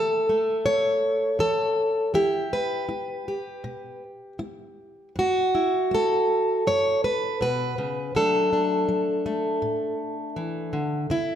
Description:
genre	folk, solo fingerstyle acoustic guitar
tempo	80 BPM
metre	4/4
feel	straight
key	unclear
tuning	A4 = 442 Hz
part	fingerpicked plugged-in steel-string acoustic guitar	solo	0.0-11.4 s	F#2 to C#5	-22 LUFS	equal	none
room	wet large studio reverb, RT60 1.3 s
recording	none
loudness	-22 LUFS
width	side -9 dB against mid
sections	0.0-11.4 A section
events	none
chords	0.0 A; 2.1 Em; 5.2 F#m7; 8.2 D

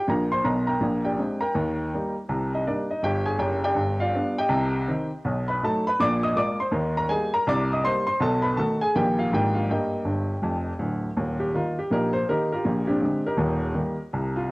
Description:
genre	jazz, stride piano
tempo	162 BPM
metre	4/4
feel	swing 62% on 8ths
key	Eb major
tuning	A4 = 443 Hz
part	clear upright piano	solo	0.0-14.5 s	D1 to Eb6	-22 LUFS	equal	cassette tape
room	moderate spring reverb, RT60 1.4 s, small room ambience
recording	home recording on cassette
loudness	-22 LUFS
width	side -24 dB against mid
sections	0.0-11.2 A section; 11.2-14.5 A section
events	upright piano fill 10.1-11.2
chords	0.0 Eb (rootless); 0.8 Bb13; 1.5 Eb; 2.3 Cm7; 3.8 G7; 4.5 Cm; 5.2 B7; 6.0 Bb7; 6.7 Eb; 7.5 Cm7; 8.2 B7; 8.9 Eb/Bb; 9.3 Bb7/Ab; 9.7 Eb/G; 11.2 Eb; 12.6 Bb13; 13.4 Eb

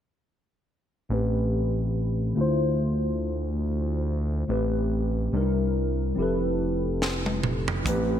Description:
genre	R&B, neo-soul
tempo	71 BPM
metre	4/4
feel	swing 59% on 16ths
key	A minor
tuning	A4 = 443 Hz
part	mellow tine electric piano	accompaniment	1.1-8.2 s	A2 to C5	-26 LUFS	left 1 dB	analog chorus, low-pass filter
part	smooth synth bass	bass	1.1-8.2 s	F1 to D2	-28 LUFS	right 1 dB	none
part	tight funk drum kit	drums	7.0-8.1 s	hi-hat, kick drum, snare drum, toms	-28 LUFS	right 1 dB	gated reverb
part	congas	percussion	7.8-8.1 s	none	-37 LUFS	right 9 dB	none
room	light reverb, small room ambience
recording	bright 1980s-style digital production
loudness	-24 LUFS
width	side -10 dB against mid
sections	1.1-7.9 A section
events	filter sweep on tine electric piano 1.1-7.9; drum fill 7.0-7.9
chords	1.1 Am9; 2.4 Dm9; 4.5 Am9; 5.3 C9; 6.2 Fmaj9#11

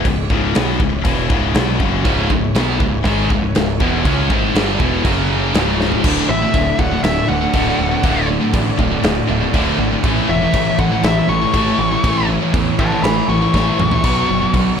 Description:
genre	heavy metal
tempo	120 BPM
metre	4/4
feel	straight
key	unclear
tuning	A4 = 440 Hz
part	muted studio string section	sustained chords	0.0-14.8 s	F#3 to D5	-30 LUFS	left 1 dB	none
part	fuzz guitar	riff	0.0-14.8 s	C#2 to C#4	-22 LUFS	right 1 dB	distortion
part	scooped high-gain guitar	riff	0.0-14.8 s	C#2 to C#4	-21 LUFS	left 11 dB	distortion
part	growling picked electric bass	bass	0.0-14.7 s	C#1 to E2	-21 LUFS	equal	overdrive
part	big rock drum kit	drums	0.1-14.7 s	crash cymbal, kick drum, snare drum, splash cymbal, toms	-20 LUFS	equal	none
part	scooped high-gain guitar	riff	2.0-14.8 s	C#2 to C#4	-22 LUFS	right 11 dB	distortion
part	high-gain lead guitar	melody	6.3-14.7 s	E5 to C#6	-20 LUFS	left 2 dB	distortion, ping-pong delay
room	little or no reverb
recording	none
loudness	-14 LUFS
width	side -7 dB against mid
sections	0.0-6.0 A section; 6.0-14.8 B section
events	drum fill 5.8, 13.5-14.0; half time 6.0-14.8; lead electric guitar solo 6.0-14.8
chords	0.0 C#m; 5.0 F#5; 5.5 C#m; 6.0 D; 10.0 A; 14.0 Bm

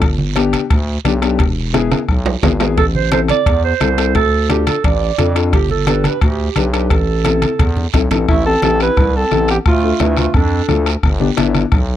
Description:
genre	latin, cumbia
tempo	174 BPM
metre	4/4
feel	straight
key	A minor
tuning	A4 = 440 Hz
part	growling FM bass	bass	0.0-12.0 s	E1 to F2	-18 LUFS	equal	none
part	bombo	percussion	0.0-11.9 s	none	-17 LUFS	left 1 dB	none
part	congas	percussion	0.0-11.9 s	none	-22 LUFS	right 3 dB	none
part	guiro	percussion	0.0-12.0 s	none	-29 LUFS	right 20 dB	none
part	timbales	percussion	0.0-8.3 s	none	-23 LUFS	right 8 dB	none
part	warm upright piano	accompaniment	0.4-11.6 s	B3 to B4	-19 LUFS	left 9 dB	none
part	breathy clarinet	second line	2.8-10.8 s	A3 to D5	-19 LUFS	right 11 dB	none
part	mellow alto saxophone	melody	8.3-10.8 s	E4 to B4	-17 LUFS	equal	none
room	little or no reverb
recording	dry, close 1970s-style studio recording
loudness	-12 LUFS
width	side -11 dB against mid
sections	0.0-8.3 A section; 8.3-12.0 B section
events	clarinet solo 0.0-8.3; drum fill 1.7-2.8, 7.4-8.3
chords	0.0 G; 1.4 E; 2.8 Am; 4.2 Dm; 5.5 G; 6.9 Am; 9.7 Dm; 11.0 G

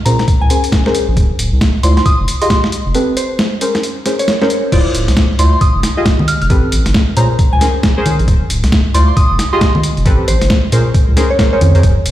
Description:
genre	UK garage, two-step garage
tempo	135 BPM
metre	4/4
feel	swing 62% on 16ths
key	unclear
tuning	A4 = 439 Hz
part	soft synth bell	melody	0.1-11.8 s	C5 to F6	-19 LUFS	right 1 dB	chorus, ping-pong delay
part	deep mellow chord stab	stabs	0.1-11.8 s	C4 to Eb5	-19 LUFS	left 1 dB	chorus, ping-pong delay
part	saturated sub bass	bass	0.1-12.1 s	D1 to Bb2	-13 LUFS	equal	none
part	boom bap sampler-style drum kit	drums	0.1-12.1 s	congas, crash cymbal, hi-hat, snare drum	-17 LUFS	equal	overdrive
part	electronic kick drum	drums	0.3-11.9 s	none	-12 LUFS	equal	overdrive
room	light reverb, digital ambience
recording	played on a big sound system in a bare room, large studio reverb, vinyl crackle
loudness	-10 LUFS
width	side -13 dB against mid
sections	0.0-4.7 A section; 4.7-12.1 B section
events	filter sweep on synth stab 0.0-4.7; break 2.9-4.7; drop 4.7-12.1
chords	0.1 Bbm9; 1.2 Dm9; 2.1 Fm9; 2.9 Am9; 3.6 Bbm9; 4.7 Dm9; 5.6 Fm9; 6.5 Am9; 7.2 Bbm9; 8.3 Dm9; 9.2 Fm9; 10.1 Am9; 10.7 Bbm9

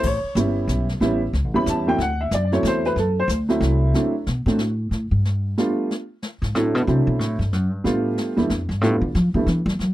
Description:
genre	jazz piano trio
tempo	184 BPM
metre	3/4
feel	swing 62% on 8ths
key	D mixolydian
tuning	A4 = 442 Hz
part	warm upright piano	melody	0.0-9.5 s	F#3 to B5	-21 LUFS	right 1 dB	slapback echo
part	upright bass	bass	0.0-9.9 s	G1 to G3	-21 LUFS	equal	none
part	jazz brush drum kit	drums	0.0-9.9 s	brushed snare drum, crash cymbal, hi-hat, kick drum, snare drum	-30 LUFS	left 2 dB	none
room	little or no reverb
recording	dry, close 1970s-style studio recording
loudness	-19 LUFS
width	side -15 dB against mid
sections	0.0-3.9 A section; 3.9-9.9 A section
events	upright piano solo 0.0-3.9; upright bass solo 3.9-9.9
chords	0.0 A7; 2.0 D7; 4.9 G7; 5.9 D7; 7.8 G7

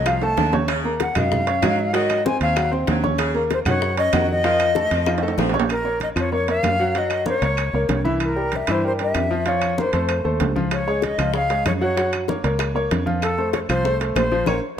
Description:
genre	latin, salsa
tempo	192 BPM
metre	4/4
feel	straight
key	unclear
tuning	A4 = 439 Hz
part	bright silver concert flute	melody	0.0-14.6 s	A4 to A5	-23 LUFS	left 2 dB	slapback echo
part	clear saxophone section	second line	0.0-5.5 s	Db3 to Gb3	-30 LUFS	right 1 dB	slapback echo
part	fingered electric bass	bass	0.0-14.6 s	Bb1 to Ab2	-25 LUFS	right 1 dB	none
part	bright upright piano	accompaniment	0.1-14.6 s	Eb3 to Gb6	-24 LUFS	equal	none
part	bongos	percussion	0.1-5.7, 10.7-14.5 s	none	-30 LUFS	left 9 dB	none
part	claves	percussion	0.1-14.5 s	none	-35 LUFS	left 4 dB	none
part	congas	percussion	0.1-14.5 s	none	-29 LUFS	equal	none
part	timbales	percussion	0.1-14.5 s	none	-28 LUFS	right 8 dB	none
room	light reverb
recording	none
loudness	-18 LUFS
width	side -9 dB against mid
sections	0.0-5.7 A section; 5.7-14.8 B section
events	drum fill 0.2-0.7, 5.1-5.7; band accent 14.5-14.8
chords	0.0 F7b9; 0.7 Ebm7; 1.9 Ab7; 3.2 Ebm7; 4.4 F7; 5.7 Bbm; 6.9 Gb; 8.2 C7; 9.5 Fsus4; 10.1 F; 10.7 Dbadd9; 12.0 Gb; 13.2 F

